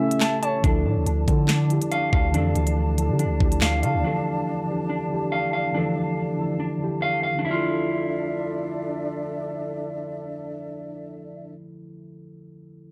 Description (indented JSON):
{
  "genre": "hip hop, drill",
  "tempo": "141 BPM",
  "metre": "4/4",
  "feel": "half-time",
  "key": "D harmonic minor",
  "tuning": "A4 = 440 Hz",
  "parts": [
    { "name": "gliding portamento lead", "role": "second line", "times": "0.0-0.6 s", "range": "C#5 to E5", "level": "-32 LUFS", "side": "equal", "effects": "chorus, analog delay" },
    { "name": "muted felt-like synth keys", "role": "accompaniment", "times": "0.0-12.9 s", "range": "C#3 to F5", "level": "-30 LUFS", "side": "equal", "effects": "chorus, low-pass filter" },
    { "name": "mellow hollow large flute ensemble", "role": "sustained chords", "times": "0.0-11.5 s", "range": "C#4 to A5", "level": "-34 LUFS", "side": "equal", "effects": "none" },
    { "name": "mellow electric guitar", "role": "arpeggios", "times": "0.0-11.6 s", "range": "C#4 to A5", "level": "-30 LUFS", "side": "equal", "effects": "low-pass filter, analog delay" },
    { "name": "drill drum kit", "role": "drums", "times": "0.1-3.9 s", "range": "handclaps, hi-hat, kick drum, snare drum", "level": "-25 LUFS", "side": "equal", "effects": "none" },
    { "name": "long sustained 808-style bass", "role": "bass", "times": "0.6-4.0 s", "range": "D2 to D3", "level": "-25 LUFS", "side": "equal", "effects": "none" }
  ],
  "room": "little or no reverb",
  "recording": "dry, gritty hardware recording",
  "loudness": "-24 LUFS",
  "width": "mono",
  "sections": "0.6-7.4 A section; 7.4-10.9 B section",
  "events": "break 0.0-0.6",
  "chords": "0.0 A; 0.6 Dmadd9"
}